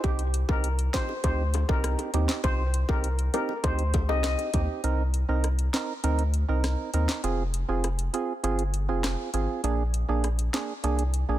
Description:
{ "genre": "dancehall", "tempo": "100 BPM", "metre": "4/4", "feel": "straight", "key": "C minor", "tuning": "A4 = 439 Hz", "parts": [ { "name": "steel pan", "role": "melody", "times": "0.0-4.7 s", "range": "G4 to Eb5", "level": "-32 LUFS", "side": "left 4 dB", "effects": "digital delay" }, { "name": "percussive organ stab", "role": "accompaniment", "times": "0.0-11.4 s", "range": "Bb3 to Bb4", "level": "-31 LUFS", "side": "right 6 dB", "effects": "chorus" }, { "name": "round analog bass", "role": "bass", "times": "0.0-11.4 s", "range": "F1 to Eb2", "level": "-26 LUFS", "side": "equal", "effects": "none" }, { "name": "island pop drum kit", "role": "drums", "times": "0.0-11.3 s", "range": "handclaps, hi-hat, kick drum, rim click, snare drum", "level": "-30 LUFS", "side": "equal", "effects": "overdrive, soft clipping on snare" }, { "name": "bongos", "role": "percussion", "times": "0.0-4.7 s", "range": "none", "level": "-39 LUFS", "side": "left 7 dB", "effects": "none" } ], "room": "little or no reverb", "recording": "dense, heavily limited modern master", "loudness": "-24 LUFS", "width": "side -13 dB against mid", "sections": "0.0-4.8 A section; 4.8-11.4 B section", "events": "kick muted 4.8-11.4", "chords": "0.0 Cm; 4.8 Cm7; 7.2 Fm; 9.6 Bb7", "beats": "| 0.04 0.64 1.24 1.84 | 2.44 3.04 3.64 4.24 | 4.84 5.44 6.04 6.64 | 7.24 7.84 8.44 9.04 | 9.64 10.24 10.84" }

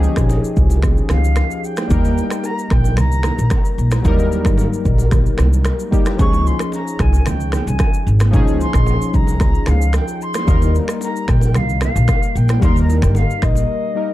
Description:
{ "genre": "afrobeats", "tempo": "112 BPM", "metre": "4/4", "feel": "straight", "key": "Eb mixolydian", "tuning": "A4 = 441 Hz", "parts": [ { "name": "warm analog keys", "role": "accompaniment", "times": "0.0-14.1 s", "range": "F3 to Bb4", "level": "-23 LUFS", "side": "left 3 dB", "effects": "chorus" }, { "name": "upright bass", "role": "bass", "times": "0.0-13.6 s", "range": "G1 to Eb2", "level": "-16 LUFS", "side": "equal", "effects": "none" }, { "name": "afro-pop drum kit", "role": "drums", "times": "0.0-13.7 s", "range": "finger snaps, kick drum, rim click, shaker", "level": "-18 LUFS", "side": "equal", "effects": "none" }, { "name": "bongos and congas", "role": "percussion", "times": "0.0-13.7 s", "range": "none", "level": "-28 LUFS", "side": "right 5 dB", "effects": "none" }, { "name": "mellow silver concert flute", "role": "melody", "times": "1.1-14.1 s", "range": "Eb5 to Db6", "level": "-26 LUFS", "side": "left 1 dB", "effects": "ping-pong delay" } ], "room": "small room ambience", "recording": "dark, warm production", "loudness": "-14 LUFS", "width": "side -15 dB against mid", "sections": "0.0-14.1 A section", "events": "break 13.7-14.1", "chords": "0.0 Dbadd9; 1.9 Eb; 6.2 Dbadd9; 10.5 Eb", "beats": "0.30 0.83 1.37 | 1.91 2.44 2.98 3.51 | 4.05 4.58 5.12 5.66 | 6.19 6.73 7.26 7.80 | 8.34 8.87 9.41 9.94 | 10.48 11.01 11.55 12.09 | 12.62 13.16 13.69" }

